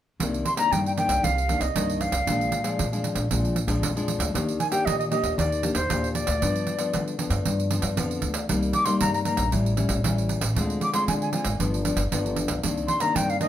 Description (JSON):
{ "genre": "samba and choro", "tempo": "116 BPM", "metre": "4/4", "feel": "straight", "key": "C minor", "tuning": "A4 = 440 Hz", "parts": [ { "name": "nylon-string guitar", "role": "accompaniment", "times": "0.2-13.5 s", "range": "F2 to G4", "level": "-27 LUFS", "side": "left 3 dB", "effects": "none" }, { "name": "upright bass", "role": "bass", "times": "0.2-13.4 s", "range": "G1 to G3", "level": "-28 LUFS", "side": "equal", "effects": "none" }, { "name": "pandeiro", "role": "percussion", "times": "0.2-13.5 s", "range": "none", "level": "-29 LUFS", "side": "right 5 dB", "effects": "none" }, { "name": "jazz flute", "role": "melody", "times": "0.5-13.5 s", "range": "C5 to D6", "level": "-26 LUFS", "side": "equal", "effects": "none" } ], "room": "moderate studio reverb, RT60 0.6 s", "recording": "none", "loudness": "-22 LUFS", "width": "side -11 dB against mid", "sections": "0.2-13.5 A section", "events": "none", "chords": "0.2 Cm9; 2.3 Bb7; 4.3 Ebmaj7; 6.4 G7; 8.5 Cm7; 9.5 A7; 10.6 Dm7b5; 11.6 G7; 12.6 Cm9" }